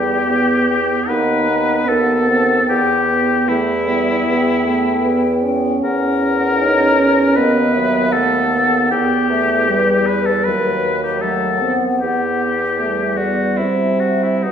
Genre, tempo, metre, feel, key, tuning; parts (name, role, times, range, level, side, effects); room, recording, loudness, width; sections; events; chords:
classical, slow romantic movement for wind quintet; 77 BPM; 4/4; rubato; E minor; A4 = 439 Hz
mellow hollow concert flute; melody; 0.0-14.5 s; B4 to G5; -22 LUFS; left 4 dB
clear oboe; second line; 0.0-14.5 s; D#4 to B4; -18 LUFS; left 3 dB
clear French horn; accompaniment; 0.0-14.5 s; F#3 to D#4; -22 LUFS; equal
clear clarinet; accompaniment; 0.0-14.5 s; F#3 to C#4; -22 LUFS; right 5 dB
mellow bassoon; bass; 0.0-14.5 s; D#2 to C3; -20 LUFS; right 2 dB
wet recital hall reverb, RT60 1.4 s; recorded in a church or concert hall; -14 LUFS; side -8 dB against mid
0.0-14.5 A section
0.0 Em; 1.1 B/D#; 2.7 Em; 5.8 F#7/E; 7.4 B/D#; 8.9 Em; 10.4 B/D#; 12.0 Em; 13.6 C